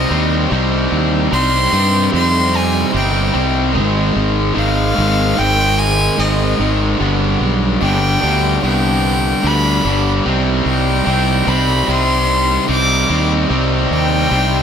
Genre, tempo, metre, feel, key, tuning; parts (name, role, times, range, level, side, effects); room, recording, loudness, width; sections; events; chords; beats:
post-rock; 74 BPM; 4/4; straight; C harmonic minor; A4 = 436 Hz
rich violin; melody; 0.0-14.6 s; Eb5 to D6; -19 LUFS; equal; tape echo
glassy FM pad; sustained chords; 0.0-14.6 s; B3 to Eb5; -27 LUFS; left 1 dB
distorted electric guitar; riff; 0.0-14.6 s; G2 to C4; -19 LUFS; left 12 dB; overdrive
overdriven semi-hollow guitar; riff; 0.0-14.6 s; G2 to Eb4; -19 LUFS; right 12 dB
fuzz fingered electric bass; bass; 0.0-14.6 s; G1 to G2; -18 LUFS; equal; overdrive
light reverb; -13 LUFS; side -8 dB against mid
0.0-14.6 A section
0.0 Cm; 3.8 Ab; 7.0 G; 10.3 Cmadd9
| 0.51 1.32 2.13 2.94 | 3.75 4.57 5.38 6.19 | 7.00 7.82 8.63 9.44 | 10.25 11.06 11.88 12.69 | 13.50 14.31